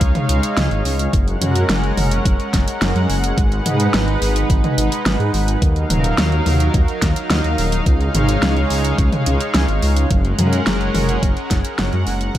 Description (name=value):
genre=synthwave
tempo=107 BPM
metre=4/4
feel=straight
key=unclear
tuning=A4 = 437 Hz
part: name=lush unison pad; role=sustained chords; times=0.0-12.4 s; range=Gb3 to Gb5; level=-21 LUFS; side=equal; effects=chorus, sidechain pumping
part: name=dark detuned saw bass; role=bass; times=0.0-12.4 s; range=Eb1 to Ab2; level=-18 LUFS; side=equal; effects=none
part: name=electronic kick drum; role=drums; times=0.0-12.4 s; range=none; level=-17 LUFS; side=equal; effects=overdrive
part: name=pop drum kit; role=drums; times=0.0-12.4 s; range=hi-hat, snare drum, toms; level=-21 LUFS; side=equal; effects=overdrive
room=little or no reverb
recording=none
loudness=-15 LUFS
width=side -12 dB against mid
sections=0.0-12.4 A section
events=fade-out 10.9-12.4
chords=0.0 Dbadd9; 1.1 Gbadd9; 3.4 Abm7; 5.6 Ebmadd9; 7.9 Dbadd9; 10.1 Gbadd9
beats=0.01 0.57 | 1.13 1.69 2.25 2.82 | 3.38 3.94 4.50 5.06 | 5.62 6.18 6.74 7.30 | 7.86 8.42 8.98 9.54 | 10.11 10.67 11.23 11.79 | 12.35